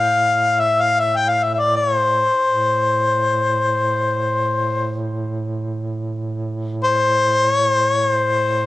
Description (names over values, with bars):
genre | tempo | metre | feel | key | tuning
caucasian folk, Caucasian lament | free time | none | none | A minor | A4 = 441 Hz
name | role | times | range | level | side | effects
warm harmonica | melody | 0.0-8.7 s | C5 to G5 | -16 LUFS | left 2 dB | cassette tape
mellow duduk | drone | 0.0-8.7 s | A2 | -24 LUFS | right 2 dB | none
room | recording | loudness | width
light reverb, small room ambience | home recording on cassette | -16 LUFS | side -16 dB against mid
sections
0.0-8.7 A section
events
none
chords
none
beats
free time